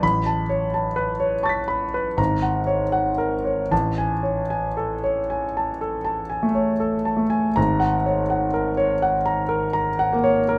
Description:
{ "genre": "classical, impressionist solo piano", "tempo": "75-86 BPM", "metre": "5/4", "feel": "rubato", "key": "unclear", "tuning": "A4 = 441 Hz", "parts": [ { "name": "clear concert grand piano", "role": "solo", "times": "0.0-10.6 s", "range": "Ab1 to B6", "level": "-22 LUFS", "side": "equal", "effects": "none" } ], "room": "light reverb", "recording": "none", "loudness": "-22 LUFS", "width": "mono", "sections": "0.0-10.6 A section", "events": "none", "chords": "0.0 Aadd9; 2.2 Ab9sus4; 3.7 Amaj7; 7.6 Ab9sus4", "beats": "| 0.02 0.74 1.45 2.19 2.94 | 3.71 4.50 5.29 6.05 6.81 | 7.57 8.31 9.03 9.74 10.49" }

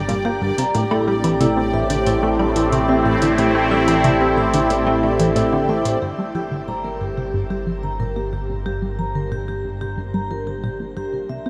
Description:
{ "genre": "ambient, sequencer-driven space music", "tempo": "91 BPM", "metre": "4/4", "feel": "straight", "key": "G dorian", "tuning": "A4 = 440 Hz", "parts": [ { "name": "sweeping resonant pad", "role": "sustained chords", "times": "0.0-11.5 s", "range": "A2 to G4", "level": "-23 LUFS", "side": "equal", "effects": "chorus, shimmer reverb" }, { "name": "vibraphone with medium mallets", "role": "arpeggios", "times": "0.0-11.5 s", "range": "E4 to Bb5", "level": "-27 LUFS", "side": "equal", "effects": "tape echo, shimmer reverb" }, { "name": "tight sequenced synth", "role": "riff", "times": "0.0-11.5 s", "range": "G2 to C4", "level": "-26 LUFS", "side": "equal", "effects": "chorus, phaser, tape echo, shimmer reverb" }, { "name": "fat analog bass", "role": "bass", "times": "0.0-11.5 s", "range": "G1 to C2", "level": "-30 LUFS", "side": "equal", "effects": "tube saturation" }, { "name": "bubbling stepped-filter texture", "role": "texture", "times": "0.0-11.5 s", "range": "C5 to D5", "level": "-34 LUFS", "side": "equal", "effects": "chorus, built-in reverb, shimmer reverb" }, { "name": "electronic hi-hat and woodblock", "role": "percussion", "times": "0.1-6.0 s", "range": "none", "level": "-34 LUFS", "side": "equal", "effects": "tape echo" } ], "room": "wet huge ambient reverb, RT60 8.0 s", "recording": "none", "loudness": "-20 LUFS", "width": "mono", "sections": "0.0-6.0 A section; 6.0-11.5 B section", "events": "filter sweep on synth arpeggio sound 6.0-11.5", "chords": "0.0 Gm; 0.7 Am7; 6.0 Gm", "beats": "0.09 | 0.75 1.41 2.06 2.72 | 3.38 4.04 4.70 5.36 | 6.02 6.68 7.34 8.00 | 8.66 9.32 9.98 10.64 | 11.29" }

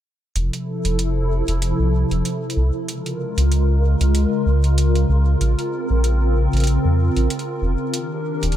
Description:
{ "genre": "IDM", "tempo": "95 BPM", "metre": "4/4", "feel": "swing 56% on 16ths", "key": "unclear", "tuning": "A4 = 440 Hz", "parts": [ { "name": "hollow soft pad", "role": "sustained chords", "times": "0.4-8.6 s", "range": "C3 to Bb4", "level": "-22 LUFS", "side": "equal", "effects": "ensemble chorus" }, { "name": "rubbery square bass", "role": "bass", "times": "0.4-8.6 s", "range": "Eb1 to F2", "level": "-17 LUFS", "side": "equal", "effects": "none" }, { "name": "electronic hi-hat", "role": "drums", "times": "0.4-8.6 s", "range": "none", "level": "-28 LUFS", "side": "right 2 dB", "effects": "none" } ], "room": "little or no reverb", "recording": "none", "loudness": "-17 LUFS", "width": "side -11 dB against mid", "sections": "0.4-8.6 A section", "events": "filter sweep on analog synth pad 0.4-8.6", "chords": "0.4 Fmaj7; 2.9 Db6; 5.4 Bbmadd9; 7.9 Ebmaj7", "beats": "| 0.36 0.99 1.62 2.25 | 2.88 3.51 4.15 4.78 | 5.41 6.04 6.67 7.30 | 7.93 8.57" }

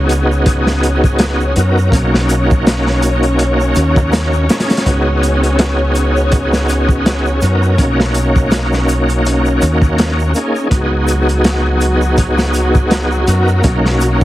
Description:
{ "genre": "trip hop", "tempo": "82 BPM", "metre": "4/4", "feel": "swing 56% on 16ths", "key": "unclear", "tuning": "A4 = 440 Hz", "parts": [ { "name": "bright tonewheel organ", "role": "accompaniment", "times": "0.0-14.2 s", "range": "A#3 to A#4", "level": "-16 LUFS", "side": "equal", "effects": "overdrive, chorus vibrato, fast rotary speaker, tremolo, tape echo" }, { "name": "warm studio string section", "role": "sustained chords", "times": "0.0-14.2 s", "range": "F#3 to C#5", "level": "-21 LUFS", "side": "left 1 dB", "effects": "vintage 12-bit sampler grit" }, { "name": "deep dub fingered electric bass", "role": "bass", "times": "0.0-14.2 s", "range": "B1 to F#2", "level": "-15 LUFS", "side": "equal", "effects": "tube saturation" }, { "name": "crunchy breakbeat drum kit", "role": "drums", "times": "0.1-14.2 s", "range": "hi-hat, kick drum, snare drum", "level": "-16 LUFS", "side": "equal", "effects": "none" }, { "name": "egg shaker", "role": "percussion", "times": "0.1-14.2 s", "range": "none", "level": "-33 LUFS", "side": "right 2 dB", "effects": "none" } ], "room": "light reverb", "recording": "heavily compressed radio sound, multiband compression, vinyl crackle", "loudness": "-11 LUFS", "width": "side -15 dB against mid", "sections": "0.0-14.2 A section", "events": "none", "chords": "0.0 C#7sus4; 1.9 Bmaj7; 4.9 C#7sus4; 7.8 Bmaj7; 10.7 C#7sus4; 13.6 Bmaj7", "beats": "0.47 1.20 | 1.94 2.67 3.40 4.13 | 4.86 5.59 6.33 7.06 | 7.79 8.52 9.25 9.98 | 10.72 11.45 12.18 12.91 | 13.64" }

